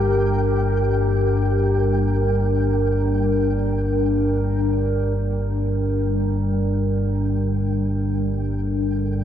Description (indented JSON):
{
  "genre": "dark ambient drone",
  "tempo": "free time",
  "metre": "none",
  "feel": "none",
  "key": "G minor",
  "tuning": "A4 = 440 Hz",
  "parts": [
    { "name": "dark analog pad", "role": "sustained chords", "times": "0.0-9.2 s", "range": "G3 to Bb4", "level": "-22 LUFS", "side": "equal", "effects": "chorus, phaser" },
    { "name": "deep rumbling drone", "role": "drone", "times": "0.0-9.2 s", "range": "G1 to G2", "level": "-22 LUFS", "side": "left 1 dB", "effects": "built-in reverb" },
    { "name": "flickering grainy texture", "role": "texture", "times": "0.0-9.2 s", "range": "G5", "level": "-37 LUFS", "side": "right 2 dB", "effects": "built-in reverb" }
  ],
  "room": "moderate huge ambient reverb, RT60 9.1 s",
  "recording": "dark, warm production",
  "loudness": "-19 LUFS",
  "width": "side -10 dB against mid",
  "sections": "0.0-5.2 A section; 5.2-9.2 B section",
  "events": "fade-out on synth texture 0.0-5.2",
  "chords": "0.0 Gm; 5.2 Gmadd9"
}